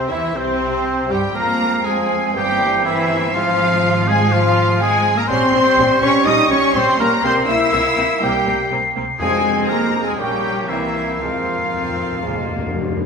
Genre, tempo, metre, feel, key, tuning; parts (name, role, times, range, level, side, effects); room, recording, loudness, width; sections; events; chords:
classical, dramatic, fast romantic movement for symphony orchestra; 122 BPM; 4/4; rubato; F minor; A4 = 440 Hz
warm symphonic violin section; melody; 0.0-13.0 s; C5 to E6; -24 LUFS; left 2 dB
clear oboe; second line; 0.0-13.0 s; C4 to E5; -24 LUFS; equal
mellow hollow concert flute; second line; 0.0-13.0 s; C5 to C7; -26 LUFS; left 2 dB
rich symphonic violin section; second line; 0.0-13.0 s; C5 to E6; -26 LUFS; left 2 dB
rich symphonic viola section; accompaniment; 0.0-13.1 s; G3 to G4; -27 LUFS; right 1 dB
warm bassoon; accompaniment; 0.0-13.0 s; C3 to Bb3; -27 LUFS; equal
bright trombone section; sustained chords; 0.0-12.4 s; C3 to Db4; -28 LUFS; right 2 dB
mellow French horn section; sustained chords; 0.0-13.0 s; C3 to E4; -24 LUFS; left 4 dB
dark trumpet section; stabs; 0.0-13.0 s; C4 to E5; -23 LUFS; right 1 dB
rich symphonic cello section; bass; 0.0-13.0 s; C3 to E4; -25 LUFS; right 2 dB
warm symphonic double bass section; bass; 0.0-13.1 s; G1 to G2; -26 LUFS; right 2 dB
timpani; percussion; 9.2-13.0 s; F2; -27 LUFS; left 3 dB
wet scoring stage reverb, RT60 1.8 s; minimal, uncompressed stereo recording; -15 LUFS; side -5 dB against mid
0.0-13.1 A section
timpani fill 11.2-13.1
0.0 C; 1.4 Fm; 2.3 C7/G; 3.3 Fm/Ab; 5.3 Gdim/Bb; 7.2 C7; 9.2 Fm; 10.2 Gdim/Bb; 10.7 C7; 11.2 Fm